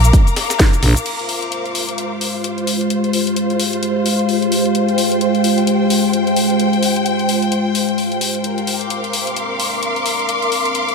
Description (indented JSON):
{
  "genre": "bass house",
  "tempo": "130 BPM",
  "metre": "4/4",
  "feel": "swing 59% on 16ths",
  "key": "F dorian",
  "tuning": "A4 = 441 Hz",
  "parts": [
    { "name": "deep dark ambient pad", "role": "sustained chords", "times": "1.8-10.9 s", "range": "Ab3 to F5", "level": "-18 LUFS", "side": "equal", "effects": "chorus, built-in reverb, sidechain pumping" },
    { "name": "house drum kit", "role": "drums", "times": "0.0-10.9 s", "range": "cabasa, crash cymbal, hi-hat, snare drum", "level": "-22 LUFS", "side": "left 3 dB", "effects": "overdrive, small room reverb" },
    { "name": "warm studio string section", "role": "texture", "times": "0.0-10.9 s", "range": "F4 to D6", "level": "-20 LUFS", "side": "left 1 dB", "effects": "sidechain pumping" },
    { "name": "breakbeat sampler-style drum kit", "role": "drums", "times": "0.1-1.0 s", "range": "hi-hat, snare drum", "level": "-26 LUFS", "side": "equal", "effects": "sidechain pumping on hats, high-pass filter on hats, small room reverb, high-pass filter on snare" },
    { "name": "electronic kick drum", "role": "drums", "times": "0.1-0.7 s", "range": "none", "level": "-12 LUFS", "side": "equal", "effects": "small room reverb" },
    { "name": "growling FM bass", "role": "bass", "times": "0.8-0.9 s", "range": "Bb1", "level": "-12 LUFS", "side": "equal", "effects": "sidechain pumping" }
  ],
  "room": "moderate lush hall reverb, RT60 2.3 s",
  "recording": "none",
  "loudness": "-15 LUFS",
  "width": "side -4 dB against mid",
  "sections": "0.0-1.1 A section; 1.1-10.9 B section",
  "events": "drop 0.0-1.1",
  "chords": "0.0 Bbadd9; 1.1 Fmadd9; 8.4 Bbadd9"
}